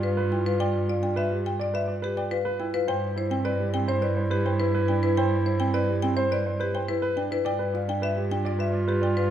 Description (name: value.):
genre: classical, minimalist pattern music.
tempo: 105 BPM.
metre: 4/4.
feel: straight.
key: G mixolydian.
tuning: A4 = 445 Hz.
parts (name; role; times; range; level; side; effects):
marimba with hard mallets; melody; 0.0-9.3 s; G4 to G5; -29 LUFS; left 6 dB; none.
mellow clarinet; second line; 0.0-9.3 s; E4 to F4; -31 LUFS; right 4 dB; none.
dark baby grand piano; arpeggios; 0.0-9.3 s; C4 to D5; -29 LUFS; right 3 dB; none.
rich cello; bass; 0.0-9.3 s; G2; -28 LUFS; right 1 dB; none.
room: moderate scoring stage reverb, RT60 1.9 s.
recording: none.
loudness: -23 LUFS.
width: side -10 dB against mid.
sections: 0.0-9.3 A section.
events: none.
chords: 0.0 G7; 2.9 Cmaj7/G; 7.4 G7.